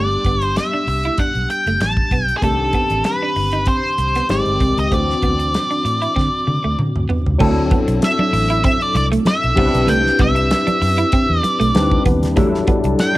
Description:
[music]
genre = polished 1980s jazz-funk pop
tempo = 96 BPM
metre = 4/4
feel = swing 54% on 16ths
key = unclear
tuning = A4 = 440 Hz
[part]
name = octave-fuzz lead guitar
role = melody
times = 0.0-13.2 s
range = Ab4 to A5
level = -19 LUFS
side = equal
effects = distortion, cassette tape
[part]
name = barky tine electric piano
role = accompaniment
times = 0.0-13.2 s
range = Eb3 to B4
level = -21 LUFS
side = left 2 dB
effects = overdrive, ensemble chorus
[part]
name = semi-hollow electric guitar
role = riff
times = 0.0-13.2 s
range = A3 to E4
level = -23 LUFS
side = right 3 dB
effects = lush chorus
[part]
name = vintage muted fingered electric bass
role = bass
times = 0.0-12.9 s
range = F#1 to D3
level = -20 LUFS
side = equal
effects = none
[part]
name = modern studio drum kit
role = drums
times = 0.2-13.2 s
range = crash cymbal, hi-hat, kick drum, snare drum, toms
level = -21 LUFS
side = equal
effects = cassette tape
[part]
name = congas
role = percussion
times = 7.4-13.1 s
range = none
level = -24 LUFS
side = right 2 dB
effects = none
[sound]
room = light reverb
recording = home recording on cassette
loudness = -14 LUFS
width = side -17 dB against mid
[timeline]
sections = 0.0-7.4 A section; 7.4-13.2 B section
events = drum fill 6.2-7.4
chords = 0.0 G; 2.4 Cmadd9; 4.3 Abmaj7; 4.9 D9; 9.6 Cmaj9; 12.4 Em11

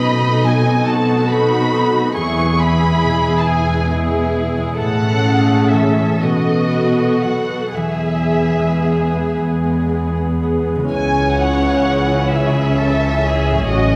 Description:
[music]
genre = classical, slow romantic movement for symphony orchestra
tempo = 36-47 BPM (dotted quarters)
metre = 6/8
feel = rubato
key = E major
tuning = A4 = 440 Hz
[part]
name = muted studio violin section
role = melody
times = 0.0-14.0 s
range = D#5 to C#6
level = -24 LUFS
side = equal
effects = none
[part]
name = muted studio violin section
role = second line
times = 0.0-14.0 s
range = C#4 to D#5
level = -26 LUFS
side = equal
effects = none
[part]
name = muted studio viola section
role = accompaniment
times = 0.0-14.0 s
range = E3 to A4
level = -24 LUFS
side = equal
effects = none
[part]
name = concert harp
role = arpeggios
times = 0.0-14.0 s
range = E2 to C#5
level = -23 LUFS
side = equal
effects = none
[part]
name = muted studio cello section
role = bass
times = 0.0-14.0 s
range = E2 to C#3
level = -22 LUFS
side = equal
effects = none
[part]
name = muted studio double bass section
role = bass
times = 10.9-14.0 s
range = A1 to C#2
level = -23 LUFS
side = equal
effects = none
[sound]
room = moderate scoring stage reverb, RT60 1.6 s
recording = none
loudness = -16 LUFS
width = mono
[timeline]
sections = 0.0-10.9 A section; 10.9-14.0 B section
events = none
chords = 0.0 B7b9; 2.2 E; 4.8 Amaj7; 6.2 B7; 7.8 E; 10.9 C#m

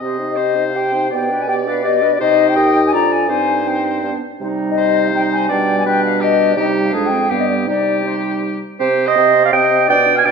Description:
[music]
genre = quick classical-period movement for wind quintet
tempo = 164 BPM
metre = 3/4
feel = rubato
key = C minor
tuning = A4 = 439 Hz
[part]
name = mellow hollow silver concert flute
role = melody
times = 0.0-10.3 s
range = B4 to Bb5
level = -18 LUFS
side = left 6 dB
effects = none
[part]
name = clear oboe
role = second line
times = 0.0-10.3 s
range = G4 to F5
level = -22 LUFS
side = left 3 dB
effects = none
[part]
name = mellow clarinet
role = accompaniment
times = 0.0-10.3 s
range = B3 to Ab5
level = -18 LUFS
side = right 6 dB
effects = none
[part]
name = warm French horn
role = accompaniment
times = 0.0-10.3 s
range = G3 to Eb4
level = -24 LUFS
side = equal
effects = none
[part]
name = mellow bassoon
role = bass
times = 0.0-10.3 s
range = Eb2 to C3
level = -22 LUFS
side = right 2 dB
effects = none
[sound]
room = wet recital hall reverb, RT60 1.5 s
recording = none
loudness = -13 LUFS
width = side -5 dB against mid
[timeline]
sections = 0.0-8.8 A section; 8.8-10.3 B section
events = none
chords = 0.0 Cm; 1.1 G/B; 2.2 Cm; 2.9 Ddim/F; 3.3 Cm/G; 4.0 G; 4.4 Cm; 5.5 G/B; 6.6 Cm; 6.9 Ddim/F; 7.3 G; 7.7 Cm

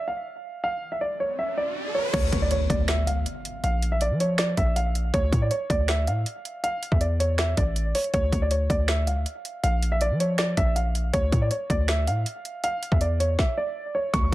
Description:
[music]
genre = hip hop, trap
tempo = 160 BPM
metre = 4/4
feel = half-time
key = D harmonic minor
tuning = A4 = 440 Hz
[part]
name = dark grand piano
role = melody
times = 0.0-14.3 s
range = C#5 to C#6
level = -27 LUFS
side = right 1 dB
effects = low-pass filter, analog delay
[part]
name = riser and impact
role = sound effects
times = 1.1-3.6, 14.1-14.3 s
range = none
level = -33 LUFS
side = equal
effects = none
[part]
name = hard-hitting 808-style bass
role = bass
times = 2.1-14.3 s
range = A1 to F3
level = -24 LUFS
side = equal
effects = none
[part]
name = trap drum kit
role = drums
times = 2.1-14.3 s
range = crash cymbal, finger snaps, hi-hat, kick drum, snare drum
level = -26 LUFS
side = equal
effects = none
[sound]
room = little or no reverb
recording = echo-heavy mix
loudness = -22 LUFS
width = side -16 dB against mid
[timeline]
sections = 0.0-2.1 A section; 2.1-14.1 B section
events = riser 1.1-2.1; impact 2.1-3.6, 14.1; stop 13.4-14.1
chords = 0.0 N.C.; 2.1 Dm; 3.6 Bb5; 5.1 Dm; 6.6 A5; 8.1 Dm; 9.6 Bb5; 11.1 Dm; 12.6 Dsus2/E

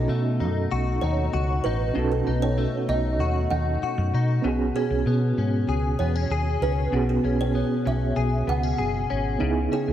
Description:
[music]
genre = indie pop, bedroom pop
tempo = 97 BPM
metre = 4/4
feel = straight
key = unclear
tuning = A4 = 440 Hz
[part]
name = direct-recorded clean electric guitar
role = accompaniment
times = 0.0-9.9 s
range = B2 to G#4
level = -27 LUFS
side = left 4 dB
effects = analog chorus, warbly pitch drift
[part]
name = mellow reed electric piano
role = accompaniment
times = 0.0-9.9 s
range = B3 to A4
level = -29 LUFS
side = right 5 dB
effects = fast tremolo, cassette tape
[part]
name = hollow-body short-scale fingered electric bass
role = bass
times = 0.0-9.9 s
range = F#1 to B2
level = -25 LUFS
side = equal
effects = none
[part]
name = kalimba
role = second line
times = 1.0-9.9 s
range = G#4 to F#5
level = -31 LUFS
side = right 5 dB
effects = ensemble chorus, tape echo
[sound]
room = moderate plate reverb, RT60 3.4 s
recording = dreamy mix soaked in reverb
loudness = -22 LUFS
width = side -11 dB against mid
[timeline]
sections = 0.0-9.9 A section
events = none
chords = 0.0 B7; 4.4 E6/B (rootless); 9.4 C#m7

